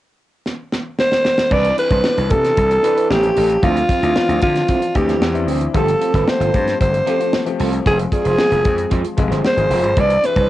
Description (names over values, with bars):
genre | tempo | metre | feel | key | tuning
polished 1980s jazz-funk pop | 114 BPM | 4/4 | straight | C major | A4 = 444 Hz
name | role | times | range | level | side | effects
tight funk drum kit | drums | 0.5-10.5 s | crash cymbal, hi-hat, kick drum, snare drum | -21 LUFS | equal | cassette tape
growling alto saxophone | melody | 1.0-10.5 s | F4 to D5 | -17 LUFS | equal | none
clear baby grand piano | accompaniment | 1.5-10.5 s | E3 to D5 | -24 LUFS | left 7 dB | lush chorus, cassette tape
electric guitar at the edge of break-up | riff | 1.5-10.5 s | F3 to D5 | -25 LUFS | right 9 dB | wide subtle chorus, cassette tape
gritty slap bass | bass | 1.5-10.5 s | F1 to D3 | -20 LUFS | equal | overdrive
congas | percussion | 10.0-10.4 s | none | -34 LUFS | left 9 dB | none
room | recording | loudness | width
light reverb | home recording on cassette, nothing above 10.7 kHz | -14 LUFS | side -15 dB against mid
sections
0.0-1.5 A section; 1.5-10.5 B section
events
drum fill 0.5-1.5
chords
0.0 N.C.; 1.5 Cmaj9; 3.1 Aaug7; 3.6 Dm9; 5.7 G9sus4; 7.9 Fm; 10.0 Cmaj9